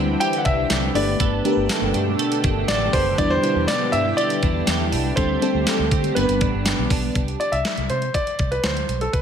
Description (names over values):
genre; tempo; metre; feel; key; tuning
1980s-style pop; 121 BPM; 4/4; straight; G major; A4 = 440 Hz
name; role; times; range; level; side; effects
warm grand piano; melody; 0.0-9.2 s; A4 to G5; -24 LUFS; equal; none
FM electric piano with soft pad layer; accompaniment; 0.0-7.2 s; G3 to C5; -24 LUFS; left 1 dB; chorus, tremolo
lush unison pad; sustained chords; 0.0-7.1 s; B2 to G4; -28 LUFS; left 1 dB; chorus, phaser
twelve-string electric guitar; riff; 0.0-7.7 s; E3 to A4; -28 LUFS; right 8 dB; analog chorus
vintage muted fingered electric bass; bass; 0.0-9.2 s; F#1 to D3; -25 LUFS; equal; none
clean 12-bit digital drum machine; drums; 0.2-9.2 s; hi-hat, kick drum, snare drum, tambourine; -24 LUFS; equal; none
room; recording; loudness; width
light reverb; none; -18 LUFS; side -8 dB against mid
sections
0.0-7.2 A section; 7.2-9.2 B section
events
none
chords
0.0 Cadd9; 1.0 Gadd9; 3.2 Em7; 5.2 D7sus4; 6.2 G; 7.2 Csus2